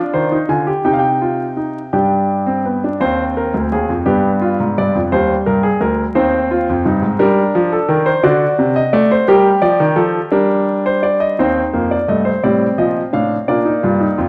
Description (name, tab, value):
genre	classical, baroque-style 4-part fugue for grand piano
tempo	57 BPM (dotted quarters)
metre	6/8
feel	straight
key	C minor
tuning	A4 = 440 Hz
part	warm grand piano	solo	0.0-14.3 s	D2 to Ab5	-15 LUFS	equal	none
room	wet recital hall reverb, RT60 1.6 s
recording	vinyl crackle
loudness	-15 LUFS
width	mono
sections	0.0-3.0 A section; 3.0-11.4 B section; 11.4-14.3 A section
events	none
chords	0.0 Dm7b5; 0.9 Cm; 1.9 G; 3.0 Cm/Eb; 4.1 G7; 5.1 Cm/Eb; 7.2 Gm; 8.2 D7; 9.3 Gm; 12.4 F/A; 13.5 Bb